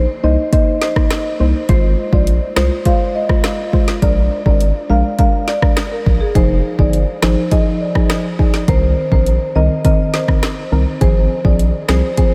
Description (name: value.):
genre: dancehall.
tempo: 103 BPM.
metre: 4/4.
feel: straight.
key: C minor.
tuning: A4 = 440 Hz.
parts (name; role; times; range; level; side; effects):
saturated sub bass; bass; 0.0-12.0 s; F1 to C2; -18 LUFS; equal; none.
marimba with medium mallets; melody; 0.2-12.3 s; Ab4 to F5; -23 LUFS; equal; tape echo.
soft round pluck; accompaniment; 0.2-12.3 s; Eb3 to C5; -22 LUFS; equal; chorus.
afro-pop drum kit; drums; 0.5-12.3 s; hi-hat, kick drum, rim click, snare drum; -18 LUFS; equal; none.
room: moderate huge ambient reverb, RT60 7.9 s.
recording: dreamy mix soaked in reverb.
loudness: -15 LUFS.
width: mono.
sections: 0.0-12.3 A section.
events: none.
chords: 0.0 Cm7; 1.7 Ab6; 4.0 Bb7; 6.4 Fm7; 8.7 Cm7; 11.0 Ab6.